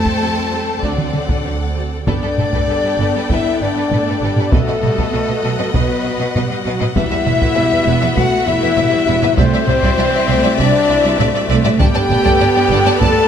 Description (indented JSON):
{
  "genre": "cinematic, epic orchestral film score",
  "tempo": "99 BPM",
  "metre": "4/4",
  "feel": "straight",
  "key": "G major",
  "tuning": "A4 = 440 Hz",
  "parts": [
    { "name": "warm symphonic violin section", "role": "melody", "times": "0.0-13.3 s", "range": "A4 to A5", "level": "-25 LUFS", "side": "left 3 dB", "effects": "none" },
    { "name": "warm symphonic violin section", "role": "second line", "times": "0.0-13.1 s", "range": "D4 to A5", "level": "-24 LUFS", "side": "left 2 dB", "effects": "none" },
    { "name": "warm French horn section", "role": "sustained chords", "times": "0.0-13.3 s", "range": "F#3 to A4", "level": "-19 LUFS", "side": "left 3 dB", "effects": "none" },
    { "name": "warm symphonic string section", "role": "sustained chords", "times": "0.0-13.3 s", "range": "B3 to G5", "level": "-23 LUFS", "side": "left 1 dB", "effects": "none" },
    { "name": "rich symphonic cello section", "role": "bass", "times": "0.0-13.1 s", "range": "C2 to A3", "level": "-23 LUFS", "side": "right 2 dB", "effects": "none" },
    { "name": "warm symphonic double bass section", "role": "bass", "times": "0.0-13.1 s", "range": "E1 to F2", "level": "-22 LUFS", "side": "right 4 dB", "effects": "none" },
    { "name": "taiko ensemble", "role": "drums", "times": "0.1-13.3 s", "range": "none", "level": "-19 LUFS", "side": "equal", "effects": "none" },
    { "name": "warm symphonic viola section", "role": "accompaniment", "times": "0.2-13.3 s", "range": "E3 to C4", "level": "-24 LUFS", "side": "right 2 dB", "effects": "none" },
    { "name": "hollow concert flute", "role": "second line", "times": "2.1-13.3 s", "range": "A4 to A5", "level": "-22 LUFS", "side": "left 2 dB", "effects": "none" }
  ],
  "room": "moderate scoring stage reverb, RT60 2.0 s",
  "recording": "close, detailed microphones",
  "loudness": "-13 LUFS",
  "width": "side -8 dB against mid",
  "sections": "0.0-2.1 A section; 2.1-13.3 B section",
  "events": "none",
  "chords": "0.0 Fadd9; 0.8 D7; 2.1 Gadd9; 4.5 B7; 7.0 Esus2; 9.4 Cadd9; 11.8 Gadd9"
}